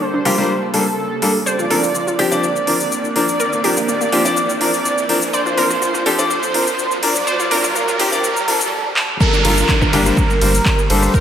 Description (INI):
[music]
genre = progressive house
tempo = 124 BPM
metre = 4/4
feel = straight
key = unclear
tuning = A4 = 437 Hz
[part]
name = wide unison lead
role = melody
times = 0.0-11.2 s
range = A4 to D5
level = -21 LUFS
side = right 1 dB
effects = wide subtle chorus, digital delay
[part]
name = lush unison pad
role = sustained chords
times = 0.0-11.2 s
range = G3 to A4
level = -27 LUFS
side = right 2 dB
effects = chorus, sidechain pumping
[part]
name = wide unison pluck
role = arpeggios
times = 0.0-11.2 s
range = Bb3 to D5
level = -23 LUFS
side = right 1 dB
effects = sidechain pumping, digital delay
[part]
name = riser and downlifter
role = sound effects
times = 0.0-11.2 s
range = none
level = -25 LUFS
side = right 2 dB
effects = none
[part]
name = bright grand piano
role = stabs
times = 0.3-11.2 s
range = F3 to D5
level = -20 LUFS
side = left 3 dB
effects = sidechain pumping
[part]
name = round analog bass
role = bass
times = 0.3-11.1 s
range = G1 to G2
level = -21 LUFS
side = equal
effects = sidechain pumping, high-pass filter
[part]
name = big-room dance drum kit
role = drums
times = 0.3-11.2 s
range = handclaps, hi-hat, ride cymbal, rim click, shaker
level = -21 LUFS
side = equal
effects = overdrive, high-pass filter on hats, high-pass filter on perc, high-pass filter on snare, high-pass filter on cymbals, high-pass filter on room
[part]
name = electronic kick drum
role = drums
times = 9.2-11.2 s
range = none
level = -17 LUFS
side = equal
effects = overdrive
[sound]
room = wet lush hall reverb, RT60 1.9 s, digital ambience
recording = high-pass filter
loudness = -14 LUFS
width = side -9 dB against mid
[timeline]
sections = 0.0-9.2 A section; 9.2-11.2 B section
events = build-up 0.0-9.2; riser 0.0-8.7; filter sweep on synth pluck 0.0-9.2; drum fill 9.0; drop 9.2-11.2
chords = 0.0 Gmadd9